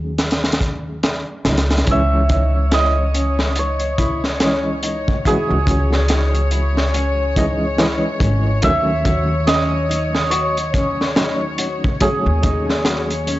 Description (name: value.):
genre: trip hop.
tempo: 71 BPM.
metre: 4/4.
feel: swing 60% on 16ths.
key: C# minor.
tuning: A4 = 441 Hz.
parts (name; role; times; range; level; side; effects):
barky reed electric piano; accompaniment; 0.0-13.4 s; D#3 to D#5; -24 LUFS; equal; fast tremolo, tape echo.
upright bass; bass; 0.0-13.4 s; G#1 to D#2; -20 LUFS; equal; none.
crunchy breakbeat drum kit; drums; 0.2-13.4 s; hi-hat, kick drum, snare drum; -20 LUFS; equal; none.
santur; melody; 1.9-13.4 s; G#4 to E5; -22 LUFS; right 2 dB; tape echo.
warm chamber string section; sustained chords; 1.9-13.4 s; C#5; -26 LUFS; left 3 dB; none.
nylon-string guitar; arpeggios; 1.9-13.4 s; C#4 to F#4; -28 LUFS; left 2 dB; vintage 12-bit sampler grit, tape echo.
room: little or no reverb.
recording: dry, gritty hardware recording, cassette tape, nothing above 7.7 kHz.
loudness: -15 LUFS.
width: side -16 dB against mid.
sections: 0.0-13.4 A section.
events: none.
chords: 0.0 D#m7b5; 1.9 C#madd9; 8.6 D#m7b5.